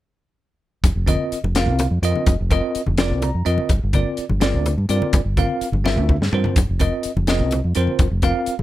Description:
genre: electric jazz fusion.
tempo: 84 BPM (dotted quarters).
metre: 6/8.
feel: straight.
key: unclear.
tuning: A4 = 441 Hz.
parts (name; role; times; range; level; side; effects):
fingered electric bass; bass; 0.8-8.6 s; F1 to G2; -20 LUFS; equal; none.
crisp fusion drum kit; drums; 0.8-8.6 s; hi-hat, kick drum, snare drum, toms; -20 LUFS; equal; none.
congas; percussion; 0.8-8.6 s; none; -26 LUFS; left 3 dB; none.
bell-like tine electric piano; accompaniment; 1.1-8.5 s; C4 to Bb5; -23 LUFS; equal; fast stereo tremolo.
room: little or no reverb.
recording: none.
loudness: -17 LUFS.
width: side -15 dB against mid.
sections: 0.8-8.6 A section.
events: tine electric piano fill 3.0-3.7; drum fill 5.8-6.6.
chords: 0.8 F5; 3.7 Gm7; 6.6 F5.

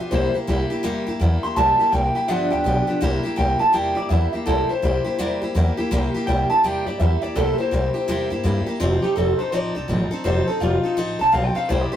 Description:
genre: rockabilly.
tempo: 166 BPM.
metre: 4/4.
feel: swing 63% on 8ths.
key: C mixolydian.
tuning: A4 = 441 Hz.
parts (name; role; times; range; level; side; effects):
electric guitar through a small old amp; melody; 0.0-12.0 s; F4 to C6; -21 LUFS; equal; none.
picked steel-string acoustic guitar; accompaniment; 0.0-12.0 s; G2 to A4; -24 LUFS; equal; none.
upright bass; bass; 0.1-12.0 s; F1 to G2; -22 LUFS; equal; none.
room: moderate studio reverb, RT60 0.5 s.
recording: rough rehearsal-room recording, tube saturation.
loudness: -18 LUFS.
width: side -10 dB against mid.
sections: 0.0-3.0 A section; 3.0-12.0 B section.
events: clean electric guitar solo 3.0-12.0.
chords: 0.1 C7; 2.3 G7; 3.0 C7; 8.8 F7.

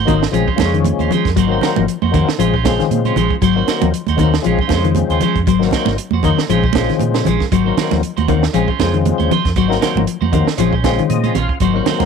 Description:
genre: afrobeat.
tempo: 117 BPM.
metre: 4/4.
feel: swing 56% on 16ths.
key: unclear.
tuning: A4 = 439 Hz.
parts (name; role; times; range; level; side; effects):
clean electric guitar; stabs; 0.0-12.0 s; Ab3 to C5; -21 LUFS; right 13 dB; none.
fingered electric bass; bass; 0.0-12.1 s; Ab1 to Bb2; -19 LUFS; right 1 dB; none.
percussive tonewheel organ; accompaniment; 0.1-12.1 s; Db3 to F5; -20 LUFS; left 11 dB; slow rotary speaker, overdrive, chorus vibrato.
semi-hollow electric guitar; arpeggios; 0.1-12.1 s; Eb3 to Gb3; -18 LUFS; left 11 dB; none.
compact cocktail drum kit; drums; 0.1-12.1 s; hi-hat, kick drum, snare drum; -20 LUFS; right 5 dB; none.
congas; percussion; 0.1-12.1 s; none; -21 LUFS; right 12 dB; none.
room: studio ambience.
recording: 1960s-style stereo with parts hard left and right.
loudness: -13 LUFS.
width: side -6 dB against mid.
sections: 0.0-12.1 A section.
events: tonewheel organ fill 10.8-11.6.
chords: 0.3 Bbm9 (rootless); 1.4 Ab9; 2.4 Bbm9; 3.4 Ab9; 4.4 Bbm9 (rootless); 5.5 Ab9; 6.5 Bbm9; 7.5 Ab9; 8.5 Bbm9 (rootless); 9.6 Ab9; 10.6 Bbm9.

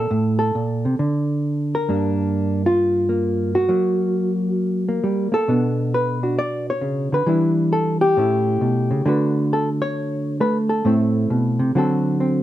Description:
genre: solo jazz.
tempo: 134 BPM.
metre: 4/4.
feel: swing 66% on 8ths.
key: B minor from 5.5 s.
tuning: A4 = 440 Hz.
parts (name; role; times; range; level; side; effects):
hollow-body jazz guitar; solo; 0.0-12.4 s; G2 to D5; -18 LUFS; equal; none.
room: light reverb.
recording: minimal, uncompressed stereo recording.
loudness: -18 LUFS.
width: side -13 dB against mid.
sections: 0.0-5.5 A section; 5.5-12.4 B section.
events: none.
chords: 0.1 Am; 1.0 N.C.; 1.9 Gm7; 3.7 F#; 5.5 Bm7; 7.3 Em7; 8.2 A7; 9.1 D6; 10.8 Am; 11.7 D7.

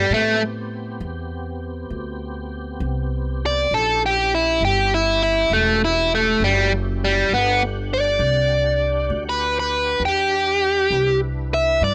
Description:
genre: slow blues.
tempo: 67 BPM (dotted quarters).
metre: 12/8.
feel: straight.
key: E minor.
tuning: A4 = 439 Hz.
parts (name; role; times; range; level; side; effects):
biting overdriven guitar; melody; 0.0-11.9 s; G3 to E5; -20 LUFS; equal; none.
tonewheel organ; sustained chords; 0.0-11.9 s; B3 to F#5; -35 LUFS; equal; overdrive, chorus vibrato, slow rotary speaker.
upright bass; bass; 0.0-11.9 s; E1 to A2; -28 LUFS; equal; none.
room: small room ambience.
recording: rough home demo mix.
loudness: -19 LUFS.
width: mono.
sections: 0.0-11.9 A section.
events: overdriven electric guitar solo 0.0-11.9.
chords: 0.0 Am7; 3.7 A#dim7; 7.3 Em7; 10.9 Cmaj7.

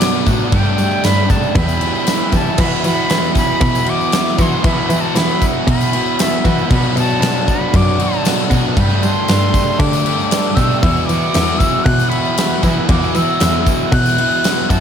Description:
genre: rock, shoegaze and dream pop.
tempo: 116 BPM.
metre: 4/4.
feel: straight.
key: E minor.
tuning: A4 = 440 Hz.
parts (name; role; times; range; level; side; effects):
breathy bright concert flute; melody; 0.0-14.8 s; E5 to F#6; -21 LUFS; left 1 dB; digital delay.
biting overdriven guitar; riff; 0.0-14.8 s; B2 to G4; -20 LUFS; right 11 dB; reverse reverb.
raw garage guitar; riff; 0.0-14.8 s; E2 to G4; -22 LUFS; left 12 dB; overdrive, wide subtle chorus.
big rock drum kit; drums; 0.0-14.8 s; crash cymbal, kick drum, snare drum; -17 LUFS; equal; none.
tambourine; percussion; 0.0-14.8 s; none; -33 LUFS; left 9 dB; none.
clear cello; bass; 0.3-14.8 s; E2 to G3; -18 LUFS; equal; none.
room: light reverb, small room ambience.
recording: none.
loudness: -12 LUFS.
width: side -8 dB against mid.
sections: 0.0-2.6 A section; 2.6-14.8 A section.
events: none.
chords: 0.0 Bm7; 0.5 Gsus2; 1.6 Em; 2.6 Esus2; 6.7 Bm7; 8.8 Gsus2; 10.8 Esus2.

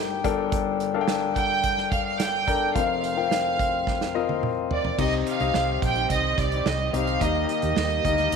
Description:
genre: piano-driven pop.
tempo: 108 BPM.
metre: 4/4.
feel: straight.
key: unclear.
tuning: A4 = 440 Hz.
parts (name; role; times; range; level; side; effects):
warm studio violin section; melody; 0.0-8.4 s; D5 to G5; -26 LUFS; right 3 dB; none.
warm concert grand piano; accompaniment; 0.0-8.4 s; F1 to Bb5; -26 LUFS; left 10 dB; none.
unplugged drum kit; drums; 0.2-8.4 s; crash cymbal, hi-hat, kick drum, snare drum, toms; -30 LUFS; right 4 dB; none.
warm studio string section; sustained chords; 5.0-8.4 s; Eb3 to G4; -34 LUFS; right 14 dB; none.
vintage muted fingered electric bass; bass; 5.0-8.4 s; Bb1 to Eb2; -28 LUFS; right 2 dB; none.
room: moderate plate reverb, RT60 2.2 s.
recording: 1960s-style stereo with parts hard left and right.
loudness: -22 LUFS.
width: side -6 dB against mid.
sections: 0.0-5.0 A section; 5.0-8.4 B section.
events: drum fill 3.9-5.0.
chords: 0.2 Gmadd9; 2.8 Fsus4; 5.0 Cm; 7.2 Eb.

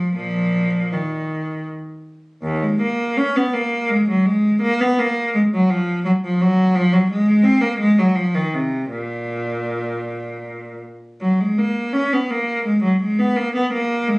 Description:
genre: classical, baroque-style suite movement for unaccompanied cello.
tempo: 77-86 BPM.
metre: 3/4.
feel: rubato.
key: unclear.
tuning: A4 = 445 Hz.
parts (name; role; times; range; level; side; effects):
clear cello; solo; 0.0-14.2 s; Eb2 to Db4; -17 LUFS; equal; none.
room: light reverb.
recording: recorded on a phone in the room, studio reverb, nothing above 10.4 kHz.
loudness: -16 LUFS.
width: side -28 dB against mid.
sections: 0.0-11.2 A section; 11.2-14.2 A section.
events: none.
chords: none.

